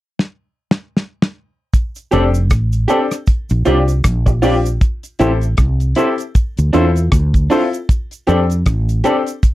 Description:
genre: lovers rock reggae.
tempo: 78 BPM.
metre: 4/4.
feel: swing 58% on 16ths.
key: F major.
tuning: A4 = 441 Hz.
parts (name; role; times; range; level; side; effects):
damped 70s drum kit; drums; 0.2-9.5 s; hi-hat, kick drum, rim click, snare drum; -14 LUFS; equal; none.
cabasa; percussion; 1.7-9.5 s; none; -37 LUFS; right 6 dB; none.
clear concert grand piano; accompaniment; 2.1-9.2 s; C4 to A4; -17 LUFS; left 3 dB; slapback echo.
electric guitar through a small old amp; stabs; 2.1-9.2 s; D4 to D5; -17 LUFS; right 3 dB; none.
woody fretless electric bass; bass; 2.1-9.0 s; F1 to F2; -15 LUFS; equal; none.
room: little or no reverb.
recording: dry, close 1970s-style studio recording.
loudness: -14 LUFS.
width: side -16 dB against mid.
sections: 0.0-1.7 A section; 1.7-9.5 B section.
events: drum fill 0.2-1.7.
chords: 0.0 N.C.; 1.7 F69; 3.3 Bb6; 4.8 Am7; 6.4 Dm7; 7.9 F69.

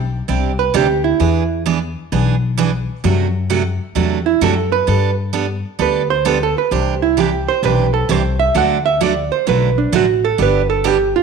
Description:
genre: country, western swing.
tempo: 131 BPM.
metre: 4/4.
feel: swing 66% on 8ths.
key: C major.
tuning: A4 = 441 Hz.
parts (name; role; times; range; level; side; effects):
upright bass; bass; 0.0-11.1 s; G1 to G2; -19 LUFS; left 3 dB; none.
picked steel-string acoustic guitar; accompaniment; 0.3-11.0 s; C3 to A4; -19 LUFS; right 8 dB; none.
hollow-body jazz guitar; second line; 0.6-11.2 s; D4 to F#5; -16 LUFS; right 8 dB; none.
room: moderate echo chamber reverb, RT60 1.4 s, studio reverb.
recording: 1960s-style stereo.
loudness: -14 LUFS.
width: side -5 dB against mid.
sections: 0.0-11.2 A section.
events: hollow-body jazz guitar solo 0.0-11.2.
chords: 0.0 Csus2; 1.2 E7; 3.0 D7/F#; 4.9 Gadd9; 6.7 Cadd9; 8.5 D; 10.4 G.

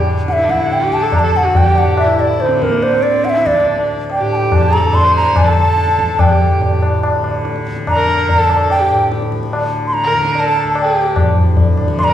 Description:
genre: indian classical, Hindustani.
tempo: 143 BPM.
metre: 4/4.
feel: straight.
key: unclear.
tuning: A4 = 440 Hz.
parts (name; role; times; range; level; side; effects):
bansuri; melody; 0.0-12.1 s; Bb4 to C6+22c; -15 LUFS; right 1 dB; none.
bright sarangi; second line; 0.0-12.1 s; Bb3 to C5; -20 LUFS; right 2 dB; none.
tanpura; drone; 0.0-12.1 s; D2 to D3; -22 LUFS; equal; none.
tabla; percussion; 0.1-12.1 s; none; -16 LUFS; left 1 dB; none.
room: wet recital hall reverb, RT60 1.6 s.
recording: recorded in a church or concert hall.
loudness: -12 LUFS.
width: side -10 dB against mid.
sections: 0.0-12.1 A section.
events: speeding up 0.0-12.1.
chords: none.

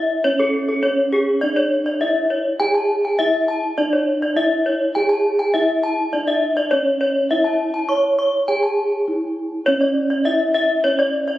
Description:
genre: gamelan.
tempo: 102 BPM.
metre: 4/4.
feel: straight.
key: C# pelog.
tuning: A4 = 439 Hz.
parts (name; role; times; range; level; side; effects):
gamelan-type bronze metallophone; melody; 0.0-11.4 s; C#4 to C#5; -20 LUFS; right 1 dB; none.
gamelan-type bronze metallophone; arpeggios; 0.0-11.4 s; G#4-30c to C#6; -19 LUFS; left 1 dB; none.
room: wet concert hall reverb, RT60 2.2 s.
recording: recorded on a phone in the room, studio reverb.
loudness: -16 LUFS.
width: side -14 dB against mid.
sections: 0.0-9.7 A section; 9.7-11.4 A section.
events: break 8.8-9.7.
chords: none.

